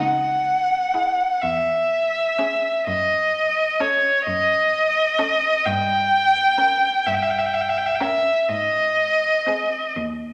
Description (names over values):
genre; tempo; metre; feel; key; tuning
classical, slow romantic movement for string quartet; 42 BPM (dotted quarters); 6/8; rubato; C# minor; A4 = 441 Hz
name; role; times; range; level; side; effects
rich violin; melody; 0.0-10.0 s; C#5 to G5; -20 LUFS; equal; none
clear cello; bass; 0.0-10.3 s; C#2 to G#2; -35 LUFS; equal; none
rich violin; second line; 0.9-9.8 s; G#4 to Bb4; -37 LUFS; equal; none
clear viola; accompaniment; 0.9-9.8 s; B#3 to E4; -37 LUFS; equal; none
room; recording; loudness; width
wet recital hall reverb, RT60 1.5 s; none; -20 LUFS; mono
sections
0.0-10.3 A section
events
none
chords
0.0 C#m; 1.4 C#m/E; 2.9 D#m7b5/F#; 5.7 Gdim; 8.5 G#